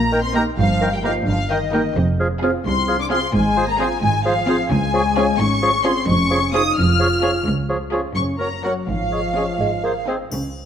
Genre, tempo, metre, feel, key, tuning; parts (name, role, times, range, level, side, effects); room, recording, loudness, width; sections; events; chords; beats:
cinematic, playful, whimsical film cue; 86 BPM (dotted quarters); 6/8; straight; Db major from 4.7 s; A4 = 440 Hz
warm studio violin section; melody; 0.0-10.1 s; Eb5 to F6; -24 LUFS; left 4 dB
mellow flute section; second line; 0.0-10.1 s; Eb5 to F6; -25 LUFS; equal
mellow French horn section; sustained chords; 0.0-10.1 s; Eb3 to F4; -25 LUFS; left 3 dB
rich studio cello section; bass; 0.0-10.7 s; C2 to Db3; -24 LUFS; right 1 dB
rich studio double bass section; bass; 0.0-10.7 s; F1 to Db2; -25 LUFS; right 2 dB
clear clarinet; second line; 0.1-10.2 s; Ab4 to Bb4; -29 LUFS; left 1 dB
warm oboe; second line; 0.1-10.2 s; C5 to G5; -29 LUFS; right 1 dB
warm bassoon; accompaniment; 0.1-10.2 s; Eb3 to C4; -27 LUFS; right 2 dB
rich studio violin section; second line; 0.3-10.3 s; G4 to F5; -33 LUFS; left 3 dB
rich studio viola section; accompaniment; 0.3-10.3 s; Bb3 to Gb4; -27 LUFS; right 1 dB
triangle; percussion; 10.3-10.7 s; -34 LUFS; left 6 dB
moderate scoring stage reverb, RT60 1.8 s; -17 LUFS; side -8 dB against mid
0.0-10.3 A section
0.0 Eb; 0.6 Eb/G; 2.0 Fm; 3.3 Fm/Ab; 4.7 Db; 6.1 Db/F; 7.5 Db; 8.2 Gb; 8.9 Db/Ab; 9.6 Ab
| 0.57 1.26 | 1.96 2.65 | 3.34 4.02 | 4.71 5.40 | 6.08 6.77 | 7.46 8.16 | 8.88 9.60 | 10.31